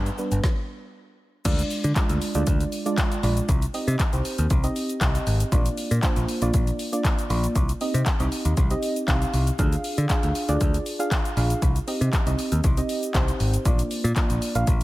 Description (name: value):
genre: dance-pop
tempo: 118 BPM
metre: 4/4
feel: straight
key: C minor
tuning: A4 = 440 Hz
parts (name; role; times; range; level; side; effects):
- soft round pluck; accompaniment; 0.0-14.8 s; G3 to F5; -28 LUFS; right 2 dB; chorus, sidechain pumping
- picked electric bass; bass; 0.0-14.8 s; G1 to D3; -23 LUFS; equal; sidechain pumping
- deep house drum kit; drums; 0.1-14.8 s; crash cymbal, handclaps, hi-hat, kick drum, shaker, snare drum; -24 LUFS; equal; none
room: little or no reverb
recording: none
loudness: -21 LUFS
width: side -18 dB against mid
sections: 0.0-1.5 A section; 1.5-14.8 B section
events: stop 0.4-1.5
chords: 0.0 G; 1.5 Ddim; 3.5 Cm; 5.5 Bb; 7.6 Cm; 9.6 Ddim; 11.6 Cm; 13.7 Bb